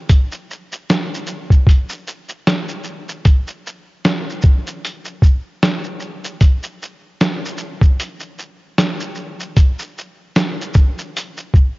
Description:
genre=hip hop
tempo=76 BPM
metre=4/4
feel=swing 57% on 16ths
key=none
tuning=none
part: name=lo-fi sampler-style drum kit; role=drums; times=0.1-11.8 s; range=hi-hat, kick drum, shaker, snare drum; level=-14 LUFS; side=equal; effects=none
room=light reverb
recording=home recording on cassette, nothing above 7.5 kHz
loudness=-15 LUFS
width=side -21 dB against mid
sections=0.0-11.8 A section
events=none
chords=none

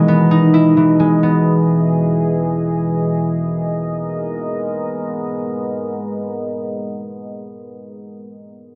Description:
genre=hip hop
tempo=free time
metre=none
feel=none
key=G# minor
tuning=A4 = 440 Hz
part: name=concert harp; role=accompaniment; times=0.0-4.3 s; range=E3 to E4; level=-16 LUFS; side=equal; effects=low-pass filter
part: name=deep dark ambient pad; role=sustained chords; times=0.0-7.7 s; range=B2 to D#5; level=-24 LUFS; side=equal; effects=chorus, built-in reverb, low-pass filter
room=digital ambience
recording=dry, gritty hardware recording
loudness=-17 LUFS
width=mono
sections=0.0-3.3 A section; 3.3-7.0 B section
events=filter sweep 0.0-3.3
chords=0.0 Emaj7; 3.3 G#madd9

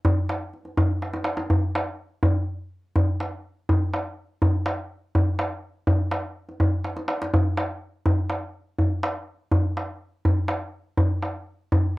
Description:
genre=persian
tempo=free time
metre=none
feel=none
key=none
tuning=none
part: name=tombak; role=percussion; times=0.0-11.8 s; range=none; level=-21 LUFS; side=equal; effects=none
room=little or no reverb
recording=close, detailed microphones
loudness=-23 LUFS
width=side -20 dB against mid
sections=0.0-7.3 A section; 7.3-12.0 A section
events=drum fill 1.0-1.5, 6.9-7.3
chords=none

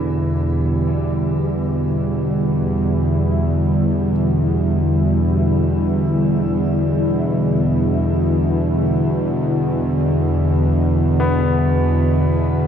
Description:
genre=dark ambient drone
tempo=free time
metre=none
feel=none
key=E minor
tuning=A4 = 442 Hz
part: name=sweeping resonant pad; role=sustained chords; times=0.0-12.7 s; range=D3 to G4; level=-19 LUFS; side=left 1 dB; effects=chorus, shimmer reverb
part: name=bright concert grand piano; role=arpeggios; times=0.0-12.7 s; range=E3 to B3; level=-28 LUFS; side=left 1 dB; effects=tape echo, shimmer reverb
part: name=bowed-like drone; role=drone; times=0.0-12.7 s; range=E2 to B2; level=-18 LUFS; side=right 1 dB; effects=built-in reverb
part: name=quartz singing bowl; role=texture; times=0.0-12.7 s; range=E4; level=-34 LUFS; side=right 4 dB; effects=none
room=wet cathedral reverb, RT60 5.3 s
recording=dark, warm production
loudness=-16 LUFS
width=side -8 dB against mid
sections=0.0-12.7 A section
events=filter sweep on synth drone 0.0-12.7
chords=0.0 Em7

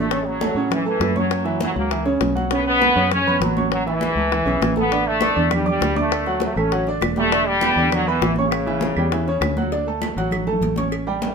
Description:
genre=latin, salsa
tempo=200 BPM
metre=4/4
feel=straight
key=D major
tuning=A4 = 440 Hz
part: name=brilliant trombone section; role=melody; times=0.0-9.4 s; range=C#3 to C#4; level=-21 LUFS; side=left 1 dB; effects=none
part: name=clear baby grand piano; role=accompaniment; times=0.0-11.3 s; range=C#3 to D6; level=-23 LUFS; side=right 3 dB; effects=none
part: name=fingered electric bass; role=bass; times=0.0-11.3 s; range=E1 to A2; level=-25 LUFS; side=left 1 dB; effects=none
part: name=bongos and cowbell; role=percussion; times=0.1-11.3 s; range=none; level=-27 LUFS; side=left 8 dB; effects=none
part: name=congas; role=percussion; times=0.1-11.3 s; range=none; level=-27 LUFS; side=right 1 dB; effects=none
part: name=claves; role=percussion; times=5.2-11.1 s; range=none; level=-32 LUFS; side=right 6 dB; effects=none
room=moderate studio reverb, RT60 0.6 s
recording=minimal, uncompressed stereo recording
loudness=-17 LUFS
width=side -5 dB against mid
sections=0.1-9.7 A section; 9.7-11.3 B section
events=none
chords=0.1 A; 1.3 F#7; 2.5 Bsus2; 3.7 A; 4.9 Asus4; 6.1 D; 7.3 Em7; 8.5 A7; 9.7 Dmaj7

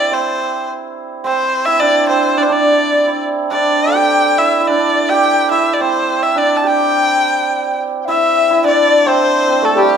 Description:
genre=chinese traditional, Chinese chamber ensemble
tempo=106 BPM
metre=2/4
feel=straight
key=G zhi mode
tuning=A4 = 440 Hz
part: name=clear erhu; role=melody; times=0.0-10.0 s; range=G4 to A5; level=-15 LUFS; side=left 2 dB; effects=none
part: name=hammered dulcimer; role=second line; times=0.0-10.0 s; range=G3 to A4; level=-15 LUFS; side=right 4 dB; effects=none
part: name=reedy large dizi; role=second line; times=8.0-10.0 s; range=G4 to G5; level=-16 LUFS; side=left 8 dB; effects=none
room=moderate recital hall reverb, RT60 1.5 s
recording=minimal, uncompressed stereo recording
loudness=-12 LUFS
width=side -7 dB against mid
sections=0.0-8.1 A section; 8.1-10.0 B section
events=none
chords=none

